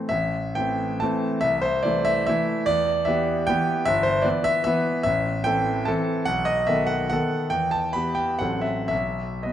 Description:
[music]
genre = classical, romantic triple-time dance for piano with dotted rhythms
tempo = 106-166 BPM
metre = 3/4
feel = rubato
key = A minor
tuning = A4 = 439 Hz
[part]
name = clear concert grand piano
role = solo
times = 0.0-9.5 s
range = G1 to B5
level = -21 LUFS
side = equal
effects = none
[sound]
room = wet recital hall reverb, RT60 1.9 s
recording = none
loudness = -21 LUFS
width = side -10 dB against mid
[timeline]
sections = 0.1-9.5 A section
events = none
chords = 0.1 Am; 1.4 Am/C; 2.7 Em; 3.9 Em/G; 5.1 Am; 6.3 B7; 7.5 Em; 8.4 F#dim/A; 8.9 B

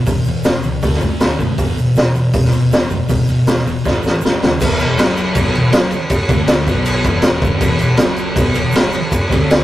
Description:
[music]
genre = garage rock duo or trio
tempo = 159 BPM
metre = 4/4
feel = straight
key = unclear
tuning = A4 = 440 Hz
[part]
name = thick fuzz guitar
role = riff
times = 0.0-9.6 s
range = E2 to D4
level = -18 LUFS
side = equal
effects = distortion
[part]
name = growling picked electric bass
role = bass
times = 0.1-9.6 s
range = E1 to B2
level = -23 LUFS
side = equal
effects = overdrive
[part]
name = raw garage drum kit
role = drums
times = 0.1-9.6 s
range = crash cymbal, hi-hat, kick drum, snare drum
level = -14 LUFS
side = equal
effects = none
[part]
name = egg shaker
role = percussion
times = 0.1-9.6 s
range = none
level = -38 LUFS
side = right 5 dB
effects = none
[sound]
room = moderate booth ambience, RT60 0.2 s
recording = rough rehearsal-room recording, tube saturation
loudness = -12 LUFS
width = side -14 dB against mid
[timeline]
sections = 0.0-4.6 A section; 4.6-9.6 B section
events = drum fill 3.8-4.6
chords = 0.0 E5; 0.8 D5; 1.6 E5; 3.8 A5; 4.2 F#5; 4.6 E5; 5.0 F#5; 5.4 E5; 6.3 D5; 6.7 B5; 7.1 E; 8.0 F#5; 8.4 E5

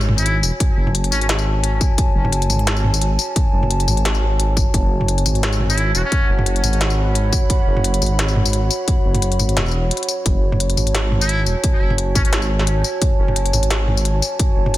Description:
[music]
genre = half-time drum and bass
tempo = 174 BPM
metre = 4/4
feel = swing 55% on 16ths, half-time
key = F# minor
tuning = A4 = 440 Hz
[part]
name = dark analog pad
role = sustained chords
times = 0.0-14.8 s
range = F#4 to B5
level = -24 LUFS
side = right 1 dB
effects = chorus, sidechain pumping
[part]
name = dark detuned saw bass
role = bass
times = 0.0-14.8 s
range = E1 to G#1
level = -18 LUFS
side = equal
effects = none
[part]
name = industrial drum kit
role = drums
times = 0.0-14.8 s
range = hi-hat, snare drum, tambourine, toms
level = -21 LUFS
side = left 1 dB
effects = none
[part]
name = trumpet with metal mute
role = melody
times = 0.2-1.3, 5.7-6.3, 11.2-12.3 s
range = C#4 to F#4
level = -27 LUFS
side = equal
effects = tape echo
[part]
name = electronic kick drum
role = drums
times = 0.6-14.5 s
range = none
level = -18 LUFS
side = equal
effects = none
[sound]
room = light reverb, digital ambience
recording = dense, heavily limited modern master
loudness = -15 LUFS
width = side -15 dB against mid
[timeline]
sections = 0.0-10.3 A section; 10.3-14.8 A section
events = drop 0.0-10.3, 10.3-14.8; break 9.9-10.3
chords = 0.0 F#madd9

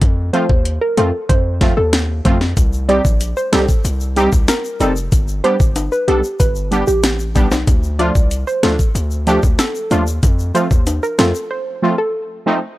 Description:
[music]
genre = dancehall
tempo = 94 BPM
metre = 4/4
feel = straight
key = unclear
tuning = A4 = 440 Hz
[part]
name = hard-hitting 808-style bass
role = bass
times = 0.0-11.3 s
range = F1 to F2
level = -19 LUFS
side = equal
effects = none
[part]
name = afro-pop drum kit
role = drums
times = 0.0-11.3 s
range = hi-hat, kick drum, snare drum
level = -15 LUFS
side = equal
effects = none
[part]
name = soft round pluck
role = melody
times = 0.3-12.1 s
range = G4 to D5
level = -20 LUFS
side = right 1 dB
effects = chorus
[part]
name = synth brass stab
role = accompaniment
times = 0.3-12.6 s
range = F3 to A4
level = -17 LUFS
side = right 1 dB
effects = chorus
[part]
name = egg shaker and timbales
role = percussion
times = 2.6-11.5 s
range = none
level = -27 LUFS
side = left 3 dB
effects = none
[sound]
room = little or no reverb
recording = dry, gritty hardware recording, transformer saturation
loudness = -13 LUFS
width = side -17 dB against mid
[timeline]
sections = 0.0-12.8 A section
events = break 11.5-12.8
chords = 0.0 F; 2.6 Cm; 5.1 G; 7.7 Dm; 10.2 F

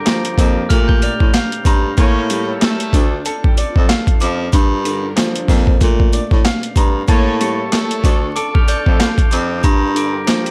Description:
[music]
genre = hip hop, boom-bap hip-hop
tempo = 94 BPM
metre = 4/4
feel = swing 57% on 16ths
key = D harmonic minor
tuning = A4 = 440 Hz
[part]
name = glockenspiel with soft plastic mallets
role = melody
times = 0.0-1.9, 7.1-10.4 s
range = A5 to G7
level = -27 LUFS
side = equal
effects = high-pass filter, low-pass filter, digital delay
[part]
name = bright upright piano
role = accompaniment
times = 0.0-10.5 s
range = G2 to D6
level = -24 LUFS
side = equal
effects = high-pass filter, low-pass filter
[part]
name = warm studio string section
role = sustained chords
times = 0.0-10.5 s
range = Bb2 to Bb5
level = -33 LUFS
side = equal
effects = none
[part]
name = boom bap sampler-style drum kit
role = drums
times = 0.1-10.5 s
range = handclaps, hi-hat, kick drum, snare drum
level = -16 LUFS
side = equal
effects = overdrive
[part]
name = sleigh bells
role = percussion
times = 0.1-10.5 s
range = none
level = -36 LUFS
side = equal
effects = none
[part]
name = breathy baritone saxophone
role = bass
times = 0.4-10.2 s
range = D2 to Bb2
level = -22 LUFS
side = equal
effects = none
[part]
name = clear trumpet section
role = stabs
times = 2.0-9.1 s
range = G3 to C#5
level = -30 LUFS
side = equal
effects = high-pass filter, low-pass filter, digital delay
[sound]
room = little or no reverb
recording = vinyl crackle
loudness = -15 LUFS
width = mono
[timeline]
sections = 0.0-10.5 A section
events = none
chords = 0.0 Gm7; 0.7 Bbmaj7; 2.0 A7b9; 2.9 Dm; 4.5 Gm7; 5.8 Bbmaj7; 7.1 A7b9; 8.0 Dm; 9.6 Gm7

